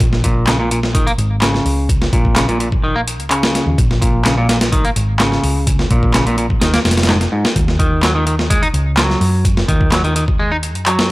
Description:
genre	breakbeat, breaks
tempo	127 BPM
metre	4/4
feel	straight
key	unclear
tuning	A4 = 440 Hz
part	hollow-body short-scale picked electric bass	bass	0.0-11.1 s	F1 to Gb2	-18 LUFS	equal	none
part	breakbeat sampler-style drum kit	drums	0.0-11.1 s	hi-hat, kick drum, snare drum	-16 LUFS	equal	overdrive
part	clean electric guitar	riff	0.2-11.1 s	Ab2 to Eb4	-18 LUFS	equal	tube saturation, tape echo
part	electronic handclaps	drums	0.5-11.0 s	none	-21 LUFS	equal	none
room	little or no reverb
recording	dry, gritty hardware recording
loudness	-13 LUFS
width	side -20 dB against mid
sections	0.0-11.1 A section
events	none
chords	0.0 Bbm7; 7.6 Ebm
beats	| 0.00 0.47 0.95 1.42 | 1.89 2.36 2.84 3.31 | 3.78 4.25 4.73 5.20 | 5.67 6.14 6.62 7.09 | 7.56 8.03 8.51 8.98 | 9.45 9.92 10.39 10.87

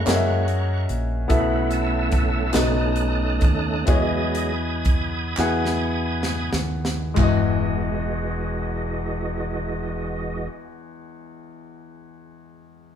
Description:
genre	slow gospel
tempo	30-49 BPM (dotted quarters)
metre	6/8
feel	straight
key	E major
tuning	A4 = 440 Hz
part	warm concert grand piano	accompaniment	0.0-13.0 s	E2 to F#5	-26 LUFS	left 2 dB	none
part	bright tonewheel organ	sustained chords	0.0-10.5 s	E3 to G#6	-27 LUFS	right 2 dB	slow rotary speaker, chorus vibrato
part	fingered electric bass	bass	0.0-10.5 s	E1 to F#2	-26 LUFS	equal	none
part	crisp fusion drum kit	drums	0.1-7.5 s	china cymbal, hi-hat, kick drum, snare drum, toms	-23 LUFS	equal	none
part	group handclap	percussion	0.1-7.8 s	none	-34 LUFS	right 4 dB	none
room	moderate stone room reverb, RT60 1.1 s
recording	band playing live in one room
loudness	-20 LUFS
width	side -8 dB against mid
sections	0.0-7.2 A section; 7.2-11.2 B section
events	tonewheel organ solo 0.0-7.2; slowing down 1.3-7.2; drum fill 5.4-7.2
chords	0.0 F#9; 1.3 B7sus4; 2.6 B7; 3.9 Emaj9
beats	0.08 | 1.30 2.55 | 3.89 5.39 | 7.18 9.18

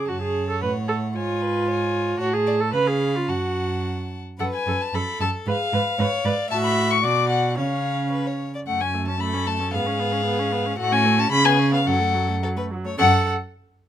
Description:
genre	quick classical-period movement for string quartet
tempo	106-116 BPM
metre	2/4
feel	rubato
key	F# minor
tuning	A4 = 440 Hz
part	warm violin	melody	0.0-13.3 s	E#5 to D6	-24 LUFS	left 5 dB	none
part	warm viola	accompaniment	0.0-13.3 s	F#3 to B4	-26 LUFS	right 2 dB	none
part	rich violin	second line	0.1-13.3 s	F#4 to F#5	-30 LUFS	left 3 dB	none
part	rich cello	bass	0.1-13.3 s	F#2 to C#3	-25 LUFS	right 2 dB	none
room	light reverb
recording	close, detailed microphones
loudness	-20 LUFS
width	side -10 dB against mid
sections	0.0-4.4 A section; 4.4-13.0 A section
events	none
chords	0.1 F#m; 1.2 C#7/G#; 2.2 D(#11)/A (rootless); 2.7 C#7; 3.3 F#m; 5.5 G#dim7; 6.5 F#m/A; 7.0 Bm; 7.6 C#; 8.7 F#m; 9.7 C#7/G#; 10.8 F#m/A; 11.3 C#5; 11.9 F#m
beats	| 0.08 0.62 | 1.16 1.68 | 2.20 2.73 | 3.28 3.84 | 4.40 4.94 | 5.47 5.99 | 6.51 7.04 | 7.58 8.13 | 8.67 9.21 | 9.73 10.26 | 10.78 11.31 | 11.86 12.42 | 12.98

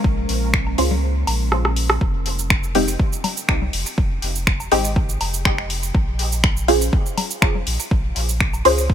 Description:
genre	dub techno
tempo	122 BPM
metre	4/4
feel	swing 53% on 16ths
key	F minor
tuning	A4 = 438 Hz
part	deep dark ambient pad	sustained chords	0.0-2.0 s	Ab3 to F5	-29 LUFS	equal	chorus, built-in reverb, sidechain pumping
part	filtered dub chord stab	stabs	0.0-8.9 s	Ab3 to C5	-21 LUFS	equal	phaser, sidechain pumping, dub echo
part	warm sub bass	bass	0.0-8.9 s	F1 to Db2	-23 LUFS	equal	tube saturation, sidechain pumping
part	electronic kick drum	drums	0.0-8.9 s	none	-20 LUFS	equal	small room ambience
part	deep house drum kit	drums	0.3-8.9 s	cabasa, finger snaps, hi-hat, rim click	-23 LUFS	equal	small room ambience
part	woodblock and congas	percussion	0.7-8.6 s	none	-29 LUFS	left 3 dB	sidechain pumping on perc, small room ambience, dub echo
room	little or no reverb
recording	none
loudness	-17 LUFS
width	side -9 dB against mid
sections	0.0-2.0 A section; 2.0-8.9 A section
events	filter sweep on synth stab 0.0-2.0; kick drops out 1.0-2.0; drum fill 1.5-2.0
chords	0.0 Bbm7; 2.0 Fm7; 5.9 Bbm7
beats	| 0.04 0.54 1.03 1.52 | 2.01 2.50 3.00 3.49 | 3.98 4.47 4.96 5.45 | 5.95 6.44 6.93 7.42 | 7.91 8.40 8.90

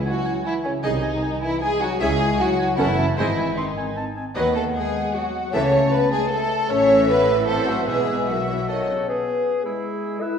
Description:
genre	classical, dramatic, fast romantic movement for symphony orchestra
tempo	154 BPM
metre	3/4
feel	straight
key	unclear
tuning	A4 = 440 Hz
part	mellow French horn section	sustained chords	0.0-10.4 s	C#3 to E4	-26 LUFS	left 1 dB	none
part	clear oboe	second line	0.1-10.4 s	E4 to B#5	-30 LUFS	equal	none
part	mellow clarinet	second line	0.1-10.4 s	A3 to E5	-30 LUFS	left 2 dB	none
part	warm symphonic violin section	second line	0.1-8.9 s	C#4 to C#5	-22 LUFS	left 1 dB	none
part	rich symphonic violin section	melody	0.8-8.9 s	D#5 to F#5	-32 LUFS	left 2 dB	none
part	rich symphonic viola section	accompaniment	0.8-9.1 s	C#3 to B#4	-28 LUFS	right 3 dB	none
part	rich symphonic cello section	bass	0.8-8.9 s	B#1 to D#3	-31 LUFS	right 1 dB	none
part	warm symphonic double bass section	bass	0.8-8.9 s	F#1 to D#2	-29 LUFS	right 1 dB	none
room	wet scoring stage reverb, RT60 1.7 s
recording	recorded in a church or concert hall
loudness	-19 LUFS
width	side -7 dB against mid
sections	0.0-9.1 A section; 9.1-10.4 B section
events	none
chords	0.0 C#m; 0.8 G#/B#; 2.0 C#m; 2.8 F#m; 3.2 G#; 4.4 B/D#; 5.5 A/C#; 6.7 A; 7.5 Am; 7.9 Bsus4; 8.7 B; 9.1 N.C.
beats	0.06 0.45 | 0.84 1.23 1.62 | 2.00 2.39 2.78 | 3.17 3.57 3.96 | 4.36 4.75 5.15 | 5.54 5.93 6.32 | 6.70 7.09 7.48 | 7.88 8.28 8.69 | 9.08 9.46 9.83 | 10.21

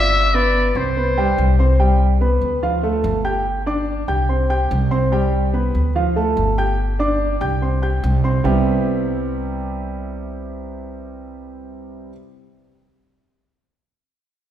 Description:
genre	latin, Cuban son and guajira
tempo	144 BPM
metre	4/4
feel	straight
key	C major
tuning	A4 = 440 Hz
part	trumpet with metal mute	melody	0.0-1.6 s	C5 to E5	-19 LUFS	left 2 dB	none
part	warm concert grand piano	arpeggios	0.0-12.1 s	C3 to G6	-20 LUFS	right 1 dB	none
part	upright bass	bass	0.0-12.1 s	G1 to D2	-20 LUFS	equal	none
room	wet scoring stage reverb, RT60 1.7 s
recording	recorded in a church or concert hall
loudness	-16 LUFS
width	side -10 dB against mid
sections	0.0-1.8 A section; 1.8-8.4 B section; 8.4-11.8 C section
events	none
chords	0.1 G7; 1.0 C5; 2.6 Dm; 3.5 G5; 4.3 C5; 6.0 Dm; 6.8 G5; 7.6 C5; 8.4 Cmaj7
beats	| 0.13 0.55 0.96 1.38 | 1.80 2.21 2.63 3.04 | 3.46 3.88 4.29 4.71 | 5.12 5.54 5.95 6.37 | 6.79 7.20 7.62 8.03 | 8.45 8.87 9.28 9.70 | 10.11 10.53 10.95 11.36

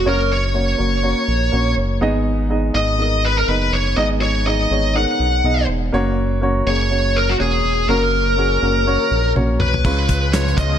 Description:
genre	piano-driven pop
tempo	123 BPM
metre	4/4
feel	swing 56% on 16ths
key	unclear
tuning	A4 = 440 Hz
part	high-gain lead guitar	melody	0.0-10.8 s	F#4 to F#5	-19 LUFS	left 2 dB	distortion
part	warm baby grand piano	accompaniment	0.0-10.8 s	G#2 to D#5	-21 LUFS	right 1 dB	none
part	round analog bass	bass	0.0-10.8 s	E1 to C#2	-20 LUFS	equal	none
part	damped 70s drum kit	drums	9.4-10.7 s	crash cymbal, handclaps, hi-hat, kick drum, snare drum, toms	-21 LUFS	equal	none
part	lush unison pad	sustained chords	9.8-10.8 s	C#3 to E#4	-27 LUFS	equal	chorus, phaser
room	light reverb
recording	none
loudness	-15 LUFS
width	side -9 dB against mid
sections	0.0-9.8 A section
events	drum fill 9.4-9.8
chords	0.0 F#; 2.0 G#m; 5.9 F#; 9.8 C#7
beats	| 0.06 0.55 1.03 1.52 | 2.02 2.50 2.99 3.48 | 3.97 4.46 4.95 5.44 | 5.93 6.42 6.91 7.40 | 7.89 8.38 8.87 9.36 | 9.85 10.34

